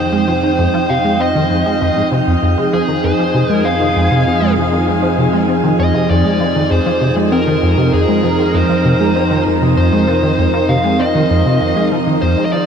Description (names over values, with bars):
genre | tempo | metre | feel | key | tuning
ambient, sequencer-driven space music | 98 BPM | 4/4 | straight | F minor | A4 = 438 Hz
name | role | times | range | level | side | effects
dark smooth lead guitar | melody | 0.0-12.7 s | Ab4 to F5 | -18 LUFS | left 1 dB | overdrive, ping-pong delay
sweeping resonant pad | sustained chords | 0.0-12.7 s | F3 to G5 | -16 LUFS | right 2 dB | chorus
plucky analog bass | riff | 0.0-12.6 s | F2 to C4 | -16 LUFS | equal | ensemble chorus, ping-pong delay
analog drone | bass | 0.0-12.7 s | F2 | -22 LUFS | equal | chorus, phaser
pulsing gated texture | texture | 4.9-12.7 s | Eb4 to G5 | -34 LUFS | left 1 dB | none
room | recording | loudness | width
wet shimmer reverb, RT60 6.6 s | cassette tape | -12 LUFS | side -7 dB against mid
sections
0.0-12.7 A section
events
none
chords
0.0 Fm7